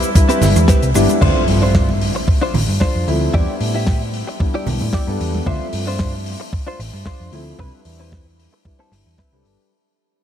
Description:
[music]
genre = nu-disco, nu disco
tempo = 113 BPM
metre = 4/4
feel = straight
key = D dorian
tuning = A4 = 439 Hz
[part]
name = warm trumpet section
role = melody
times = 0.0-0.7 s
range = E4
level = -29 LUFS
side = equal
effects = analog delay
[part]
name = dark concert grand piano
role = accompaniment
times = 0.0-9.7 s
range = F3 to E5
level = -22 LUFS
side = left 2 dB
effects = wide subtle chorus, sidechain pumping, low-pass filter, analog delay
[part]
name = direct-recorded clean electric guitar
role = riff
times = 0.0-9.5 s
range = C4 to E5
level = -24 LUFS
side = equal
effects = analog chorus, low-pass filter, analog delay
[part]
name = damped 70s drum kit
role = drums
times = 0.0-9.6 s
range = cabasa, crash cymbal, hi-hat, rim click, snare drum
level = -25 LUFS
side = left 2 dB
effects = studio reverb
[part]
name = cabasa and congas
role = percussion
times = 0.0-5.4 s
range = none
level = -25 LUFS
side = right 3 dB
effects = none
[part]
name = electronic kick drum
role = drums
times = 0.2-9.3 s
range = none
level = -16 LUFS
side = equal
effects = studio reverb
[part]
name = hollow-body short-scale picked electric bass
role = bass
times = 0.4-9.6 s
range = G1 to A2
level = -19 LUFS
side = equal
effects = none
[part]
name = impact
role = sound effects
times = 1.2-3.3 s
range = none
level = -25 LUFS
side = equal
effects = none
[sound]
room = light reverb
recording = none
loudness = -14 LUFS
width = side -9 dB against mid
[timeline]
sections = 0.0-1.2 A section; 1.2-9.7 B section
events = drop 0.0-1.2; fade-out 1.2-9.7; impact 1.2-3.3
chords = 0.0 Cmaj7; 1.2 Dm7; 3.3 Em7; 5.5 Dm7; 7.6 Cmaj7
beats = 0.15 0.69 | 1.22 1.75 2.28 2.81 | 3.34 3.87 4.40 4.93 | 5.46 6.00 6.53 7.06 | 7.59 8.12 8.65 9.18

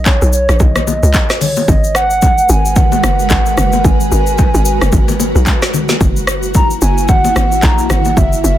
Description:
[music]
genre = amapiano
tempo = 111 BPM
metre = 4/4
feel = swing 58% on 16ths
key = unclear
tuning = A4 = 440 Hz
[part]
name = hollow clarinet-like synth lead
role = melody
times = 0.0-8.6 s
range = C#5 to A#5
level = -16 LUFS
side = right 1 dB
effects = chorus, tape echo
[part]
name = tight log drum bass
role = bass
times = 0.0-8.6 s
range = F#1 to C#2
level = -14 LUFS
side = equal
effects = none
[part]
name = deep house drum kit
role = drums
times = 0.1-8.6 s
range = handclaps, hi-hat, kick drum, rim click, shaker, snare drum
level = -14 LUFS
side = equal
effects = soft clipping on snare
[part]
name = bongos and congas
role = percussion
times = 0.1-8.3 s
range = none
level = -21 LUFS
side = left 7 dB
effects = none
[part]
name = ethereal airy pad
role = sustained chords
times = 2.4-8.6 s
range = G#3 to B4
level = -19 LUFS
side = right 2 dB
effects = ensemble chorus, built-in reverb, tremolo, sidechain pumping
[sound]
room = little or no reverb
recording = dense, heavily limited modern master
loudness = -10 LUFS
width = side -12 dB against mid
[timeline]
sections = 0.0-8.6 A section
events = none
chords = 0.0 Badd9; 1.7 G#m9; 5.7 F#9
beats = 0.06 0.60 1.14 | 1.68 2.22 2.76 3.31 | 3.85 4.39 4.93 5.47 | 6.01 6.55 7.09 7.63 | 8.17

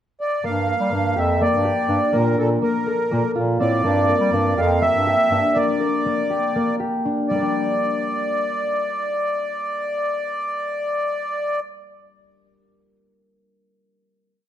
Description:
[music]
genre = contemporary instrumental, chamber music in an uneven meter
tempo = 244 BPM (eighths)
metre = 7/8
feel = straight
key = G dorian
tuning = A4 = 440 Hz
[part]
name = accordion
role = melody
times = 0.2-11.6 s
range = A4 to F5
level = -22 LUFS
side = equal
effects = light tremolo tuning
[part]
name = concert harp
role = arpeggios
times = 0.4-11.9 s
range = G3 to Bb4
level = -23 LUFS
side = left 1 dB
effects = none
[part]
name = clear bass clarinet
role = bass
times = 0.4-5.4 s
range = F2 to G3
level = -22 LUFS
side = right 1 dB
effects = none
[sound]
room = moderate recital hall reverb, RT60 1.6 s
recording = minimal, uncompressed stereo recording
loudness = -18 LUFS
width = side -10 dB against mid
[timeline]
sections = 0.0-0.4 pickup bar; 0.4-7.3 A section; 7.3-10.8 final chord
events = slowing down 3.8-7.3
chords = 0.4 Gm7; 2.1 Bb5; 3.8 Gm7; 5.6 Gm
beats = 0.19 | 0.43 0.68 0.92 1.16 1.40 1.65 1.89 | 2.13 2.38 2.62 2.87 3.11 3.35 3.60 | 3.84 4.08 4.33 4.57 4.82 5.06 5.31 | 5.55 5.80 6.05 6.30 6.55 6.80 7.05 | 7.30 7.56 7.81 8.06 8.32 8.57 8.82 | 9.08 9.33 9.58 9.84 10.09 10.34 10.59

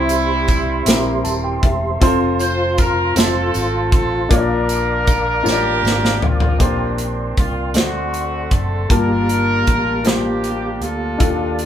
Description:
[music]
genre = slow gospel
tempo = 52 BPM (dotted quarters)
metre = 6/8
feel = straight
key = Bb major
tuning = A4 = 443 Hz
[part]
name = warm horn section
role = melody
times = 0.0-11.7 s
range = G3 to C5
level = -21 LUFS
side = right 1 dB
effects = none
[part]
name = warm upright piano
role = accompaniment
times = 0.0-11.7 s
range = G2 to A5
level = -22 LUFS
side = left 2 dB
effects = none
[part]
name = mellow tonewheel organ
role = sustained chords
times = 0.0-11.7 s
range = Bb3 to D6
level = -24 LUFS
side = right 1 dB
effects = slow rotary speaker, chorus vibrato
[part]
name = fingered electric bass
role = bass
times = 0.0-11.7 s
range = Eb1 to Eb2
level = -24 LUFS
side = equal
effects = none
[part]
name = modern studio drum kit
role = drums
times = 0.1-11.7 s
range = hi-hat, kick drum, snare drum, toms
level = -17 LUFS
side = equal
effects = none
[part]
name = tambourine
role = percussion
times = 0.1-6.2 s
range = none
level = -31 LUFS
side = right 4 dB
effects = none
[sound]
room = moderate large studio reverb, RT60 0.9 s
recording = band playing live in one room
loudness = -15 LUFS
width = side -10 dB against mid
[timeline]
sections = 0.0-6.6 A section; 6.6-11.7 B section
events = upright piano fill 0.9-2.0; drum fill 5.5-6.6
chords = 0.0 C; 2.0 F; 4.3 Bb; 6.6 Bb69; 7.8 D7; 8.9 Gm9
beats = 0.86 | 2.01 3.16 | 4.30 5.45 | 6.60 7.75 | 8.90 10.05 | 11.20

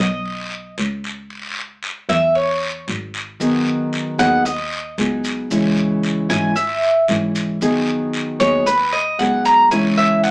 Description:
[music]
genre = latin, Cuban son and guajira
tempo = 114 BPM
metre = 4/4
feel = straight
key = G# minor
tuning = A4 = 440 Hz
[part]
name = Cuban tres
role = arpeggios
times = 0.0-10.3 s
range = B4 to A#5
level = -16 LUFS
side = equal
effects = none
[part]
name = warm double bass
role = bass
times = 0.0-10.3 s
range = G#1 to E2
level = -25 LUFS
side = equal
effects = none
[part]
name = guiro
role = percussion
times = 0.3-10.3 s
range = none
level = -27 LUFS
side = left 1 dB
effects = none
[part]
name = nylon-string guitar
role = accompaniment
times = 3.4-10.3 s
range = C#3 to G#4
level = -18 LUFS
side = equal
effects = none
[part]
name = maracas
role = percussion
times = 3.4-10.3 s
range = none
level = -32 LUFS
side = right 1 dB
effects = none
[sound]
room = wet small room reverb, RT60 0.5 s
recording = small speaker sound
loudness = -15 LUFS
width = side -27 dB against mid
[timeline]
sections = 0.0-10.3 A section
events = Cuban tres solo 0.0-10.3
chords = 0.0 G#m (rootless); 1.3 C#m; 3.4 G#m7; 5.5 C#m; 7.6 G#m7; 9.7 C#m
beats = 0.26 0.78 | 1.30 1.83 2.35 2.88 | 3.41 3.93 4.46 4.98 | 5.51 6.04 6.56 7.09 | 7.61 8.14 8.66 9.19 | 9.72 10.24

